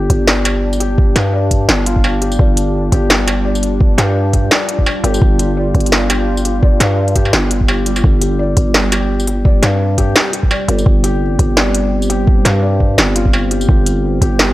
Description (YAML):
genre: half-time drum and bass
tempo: 170 BPM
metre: 4/4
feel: swing 56% on 16ths, half-time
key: unclear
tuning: A4 = 438 Hz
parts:
  - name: deep dark ambient pad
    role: sustained chords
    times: 0.1-14.5 s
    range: G3 to Bb4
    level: -22 LUFS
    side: equal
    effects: chorus, built-in reverb, vintage 12-bit sampler grit, sidechain pumping
  - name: felt-muted upright piano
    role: arpeggios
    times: 0.0-14.5 s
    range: G3 to D5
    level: -22 LUFS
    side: left 4 dB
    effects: analog delay
  - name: growling 808-style bass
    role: bass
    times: 0.0-14.5 s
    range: G1 to G2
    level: -15 LUFS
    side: equal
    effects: none
  - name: electronic kick drum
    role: drums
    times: 0.1-14.3 s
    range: none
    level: -13 LUFS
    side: equal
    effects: none
  - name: industrial drum kit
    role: drums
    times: 0.1-14.5 s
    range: hi-hat, snare drum, struck metal, tambourine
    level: -16 LUFS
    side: equal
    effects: none
room: little or no reverb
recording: dry, gritty hardware recording, transformer saturation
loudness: -11 LUFS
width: side -16 dB against mid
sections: 0.0-14.5 A section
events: none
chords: 0.0 G5